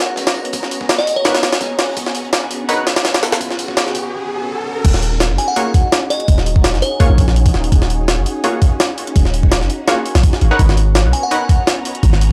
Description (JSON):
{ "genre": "drum and bass, jungle", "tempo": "167 BPM", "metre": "4/4", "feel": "swing 54% on 16ths", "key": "Eb minor", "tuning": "A4 = 438 Hz", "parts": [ { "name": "glassy synth bell", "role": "melody", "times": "0.0-1.7, 5.4-7.2, 11.1-11.6 s", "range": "Db5 to Ab5", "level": "-24 LUFS", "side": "equal", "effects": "chorus, dub echo" }, { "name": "soft string machine", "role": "sustained chords", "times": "0.0-12.3 s", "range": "Cb4 to Bb5", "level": "-28 LUFS", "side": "equal", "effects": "phaser, ensemble chorus" }, { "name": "crunchy breakbeat drum kit", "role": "drums", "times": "0.0-4.0 s", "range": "hi-hat, snare drum, tambourine", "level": "-32 LUFS", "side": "equal", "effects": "none" }, { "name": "jungle sampler-style drum kit", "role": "drums", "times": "0.0-12.3 s", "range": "crash cymbal, hi-hat, kick drum, snare drum", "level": "-17 LUFS", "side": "equal", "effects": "high-pass filter on hats, studio reverb, high-pass filter on kick, high-pass filter on snare, high-pass filter on cymbals" }, { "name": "riser", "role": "sound effects", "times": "1.7-4.8 s", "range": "none", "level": "-30 LUFS", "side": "equal", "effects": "none" }, { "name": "orchestra-hit-like synth stab", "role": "stabs", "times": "1.2-2.8, 5.6-11.4 s", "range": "Bb3 to Gb5", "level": "-24 LUFS", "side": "equal", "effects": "built-in reverb, dub echo" }, { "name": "long sustained 808-style bass", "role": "bass", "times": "4.8-12.3 s", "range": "Eb1 to Cb2", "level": "-17 LUFS", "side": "equal", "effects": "none" } ], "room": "light reverb, small room ambience", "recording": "dry, gritty hardware recording, vinyl crackle", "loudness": "-15 LUFS", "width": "mono", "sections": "0.0-4.8 A section; 4.8-12.3 B section", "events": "build-up 0.0-4.8; riser 1.7-4.8; break 4.1-4.8; drop 4.8-12.3", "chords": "0.0 Abm11; 4.8 Ebm11; 10.6 Abm11", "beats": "0.17 | 0.53 0.89 1.25 1.61 | 1.97 2.33 2.69 3.05 | 3.41 3.77 4.13 4.49 | 4.84 5.20 5.56 5.92 | 6.28 6.64 7.00 7.36 | 7.72 8.08 8.44 8.80 | 9.16 9.52 9.87 10.23 | 10.59 10.95 11.31 11.67 | 12.03" }